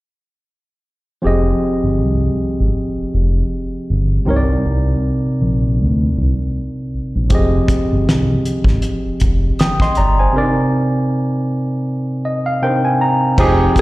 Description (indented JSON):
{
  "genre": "R&B, neo-soul",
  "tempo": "79 BPM",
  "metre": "4/4",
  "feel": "swing 56% on 16ths",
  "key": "F dorian",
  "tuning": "A4 = 439 Hz",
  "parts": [
    { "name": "barky tine electric piano", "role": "accompaniment", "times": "1.2-13.8 s", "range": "C3 to Eb6", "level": "-17 LUFS", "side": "equal", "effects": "overdrive, plate reverb, slapback echo" },
    { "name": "smooth synth bass", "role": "bass", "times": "1.2-13.7 s", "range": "F1 to D2", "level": "-16 LUFS", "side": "equal", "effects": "none" },
    { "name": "cloth-damped thuddy drum kit", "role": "drums", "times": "7.3-13.8 s", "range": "crash cymbal, hi-hat, kick drum, snare drum", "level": "-16 LUFS", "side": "equal", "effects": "none" }
  ],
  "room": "light reverb",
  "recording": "live gig heard through the venue's PA, recital hall reverb",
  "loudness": "-14 LUFS",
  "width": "side -19 dB against mid",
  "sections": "1.2-13.4 A section",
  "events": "tine electric piano fill 11.9-13.4",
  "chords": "1.2 Fm9; 4.3 Cm9; 7.3 Fm9; 10.3 Cm9",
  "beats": "| 1.23 1.99 2.75 3.51 | 4.27 5.03 5.79 6.54 | 7.30 8.06 8.82 9.58 | 10.34 11.10 11.86 12.62 | 13.38"
}